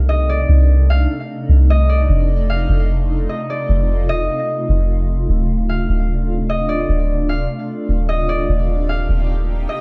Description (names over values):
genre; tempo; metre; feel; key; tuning
hip hop, atmospheric cloud-rap; 150 BPM; 4/4; half-time; unclear; A4 = 440 Hz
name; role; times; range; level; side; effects
concert harp; melody; 0.0-9.8 s; D5 to F5; -26 LUFS; equal; low-pass filter, digital delay
shimmering ambient pad; sustained chords; 0.0-9.8 s; C3 to G4; -26 LUFS; equal; chorus, built-in reverb, phaser
soft 808-style bass; bass; 0.0-9.7 s; D1 to C2; -18 LUFS; equal; none
room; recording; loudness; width
small room ambience; none; -17 LUFS; mono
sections
0.0-9.8 A section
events
none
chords
0.0 Cm69; 2.1 F7; 5.3 Dm7; 8.5 Eb6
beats
0.09 | 0.49 0.89 1.29 1.69 | 2.09 2.49 2.89 3.29 | 3.69 4.09 4.49 4.89 | 5.29 5.69 6.09 6.49 | 6.89 7.29 7.69 8.09 | 8.49 8.89 9.29 9.69